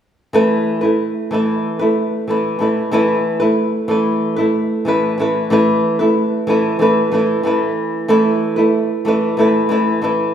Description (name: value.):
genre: pop.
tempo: 93 BPM.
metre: 4/4.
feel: straight.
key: unclear.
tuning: A4 = 440 Hz.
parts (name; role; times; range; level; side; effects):
flamenco guitar; solo; 0.3-10.3 s; E3 to B4; -14 LUFS; equal; none.
room: wet recital hall reverb, RT60 1.6 s.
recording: recorded in a church or concert hall.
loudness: -14 LUFS.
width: side -9 dB against mid.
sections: 0.3-5.5 A section; 5.5-10.3 B section.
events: none.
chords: 0.3 Esus4.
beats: | 0.34 0.99 1.63 2.28 | 2.93 3.57 4.22 4.87 | 5.51 6.16 6.80 7.45 | 8.10 8.74 9.39 10.03.